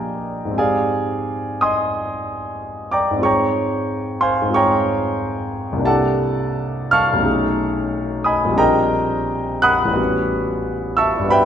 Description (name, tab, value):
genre	classical, impressionist solo piano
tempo	89 BPM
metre	4/4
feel	uneven beats, rubato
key	unclear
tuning	A4 = 440 Hz
part	clear concert grand piano	solo	0.0-11.4 s	A1 to Gb6	-17 LUFS	equal	none
room	wet scoring stage reverb, RT60 1.6 s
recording	none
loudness	-17 LUFS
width	side -9 dB against mid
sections	0.0-11.4 A section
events	none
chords	0.0 Gm7/Bb; 3.3 Dbmaj7/Ab; 5.9 C13; 7.3 B13; 8.6 Bb13; 10.0 A13